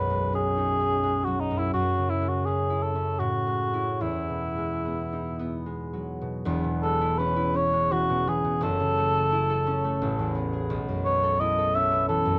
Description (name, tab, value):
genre	classical, impressionist duo for cor anglais and harp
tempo	71-90 BPM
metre	3/4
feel	rubato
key	E major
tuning	A4 = 440 Hz
part	dark cor anglais	melody	0.0-12.4 s	D#4 to E5	-28 LUFS	equal	none
part	concert harp	accompaniment	0.0-12.4 s	E1 to A4	-30 LUFS	equal	none
room	light reverb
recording	dark, warm production, faint mains hum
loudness	-26 LUFS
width	mono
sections	0.0-6.5 A section; 6.5-12.4 B section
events	none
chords	0.0 B69; 1.8 F#sus2; 3.2 Amaj7; 4.0 Emaj9; 6.5 E6; 8.6 F#m7; 10.0 Amaj9; 10.7 B9sus4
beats	0.34 1.05 | 1.75 2.47 3.21 | 4.02 4.85 5.67 | 6.47 7.19 7.92 | 8.62 9.32 10.01 | 10.69 11.40 12.08